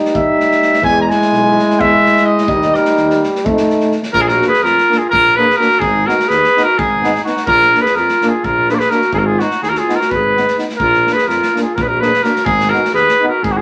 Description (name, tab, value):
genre	balkan folk, Balkan brass band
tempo	253 BPM (eighths)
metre	7/8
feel	straight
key	Bb phrygian dominant from 4.1 s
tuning	A4 = 440 Hz
part	clear euphonium	accompaniment	0.0-13.3 s	D4 to E4	-22 LUFS	equal	none
part	clear trombone	accompaniment	0.0-13.3 s	G3 to Cb4	-21 LUFS	equal	none
part	unplugged drum kit	percussion	0.0-13.6 s	kick drum, snare drum	-27 LUFS	equal	none
part	mellow tuba	bass	0.1-13.6 s	Ab1 to F2	-24 LUFS	equal	none
part	warm trumpet	melody	0.2-13.6 s	Gb4 to Bb5	-15 LUFS	equal	none
part	mellow clarinet	second line	4.1-13.6 s	Eb4 to Bb4	-22 LUFS	equal	none
room	wet studio reverb, RT60 0.8 s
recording	vinyl crackle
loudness	-13 LUFS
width	mono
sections	0.0-4.1 A section; 4.1-13.6 B section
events	trumpet solo 0.0-4.1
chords	0.0 Eb; 0.8 E; 2.5 Eb; 3.4 F7; 4.1 Bb; 5.8 Abm; 7.5 Bb; 9.1 Abm; 10.8 Bb; 12.5 Abm